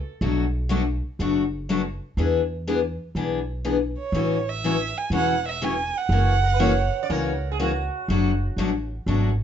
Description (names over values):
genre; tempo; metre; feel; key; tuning
acoustic string swing (jazz manouche); 122 BPM; 4/4; swing 66% on 8ths; unclear; A4 = 439 Hz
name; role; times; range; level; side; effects
sitar; second line; 0.0-0.5, 6.4-8.5 s; F#4 to D5; -30 LUFS; right 10 dB; none
picked steel-string acoustic guitar; accompaniment; 0.2-9.3 s; B2 to G#4; -24 LUFS; left 4 dB; none
upright bass; bass; 0.2-9.4 s; E1 to E2; -25 LUFS; equal; none
warm violin; melody; 4.0-7.4 s; C#5 to G#5; -25 LUFS; right 6 dB; none
room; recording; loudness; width
moderate studio reverb, RT60 0.6 s; nothing above 7.9 kHz; -21 LUFS; side -9 dB against mid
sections
0.0-9.4 A section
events
none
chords
0.2 Bm7; 2.2 E7; 4.1 A6; 6.1 F#7; 8.1 Bm7/F#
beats
| 0.20 0.70 1.19 1.68 | 2.17 2.66 3.15 3.65 | 4.14 4.63 5.12 5.61 | 6.10 6.60 7.09 7.58 | 8.07 8.56 9.06